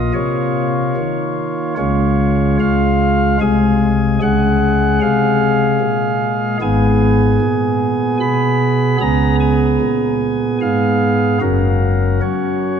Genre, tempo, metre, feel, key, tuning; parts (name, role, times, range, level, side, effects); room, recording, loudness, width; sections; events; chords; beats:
classical, chorale-style piece for pipe organ; 75 BPM; 3/4; rubato; A4 = 444 Hz
pipe organ, flutes; solo; 0.0-12.8 s; Gb1 to Cb6; -13 LUFS; equal
wet church reverb, RT60 3.4 s; dark, warm production; -13 LUFS; side -7 dB against mid
0.0-12.8 A section
0.0 Bbm; 1.8 Db; 3.4 Ab/C; 4.2 Db; 6.6 Abm; 9.0 Db7; 11.4 Gb
0.14 0.96 | 1.79 2.60 3.42 | 4.21 5.01 5.81 | 6.61 7.41 8.21 | 9.01 9.82 10.62 | 11.42 12.23